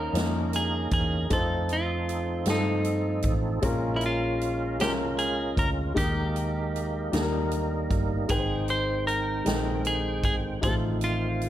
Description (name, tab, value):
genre	slow gospel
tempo	52 BPM (dotted quarters)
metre	6/8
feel	straight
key	Ab major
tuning	A4 = 437 Hz
part	clean electric guitar	melody	0.0-11.5 s	Eb4 to C5	-30 LUFS	equal	slapback echo
part	warm grand piano	accompaniment	0.0-11.5 s	Ab2 to G5	-31 LUFS	left 3 dB	none
part	percussive tonewheel organ	sustained chords	0.0-11.5 s	Eb3 to G5	-33 LUFS	right 3 dB	slow rotary speaker, overdrive, chorus vibrato
part	hollow-body short-scale fingered electric bass	bass	0.0-11.5 s	G1 to G2	-30 LUFS	equal	none
part	swinging big-band drum kit	drums	0.2-11.5 s	hi-hat, kick drum, snare drum	-31 LUFS	equal	none
room	light reverb, small room ambience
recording	none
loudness	-24 LUFS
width	side -12 dB against mid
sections	0.0-11.5 A section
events	none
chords	0.0 Eb7; 1.3 F7; 3.6 Bbm7; 6.0 Ebsus4; 7.1 Eb; 8.3 Abmaj7; 10.6 F7/A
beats	0.14 | 1.31 2.47 | 3.64 4.80 | 5.97 7.13 | 8.30 9.47 | 10.63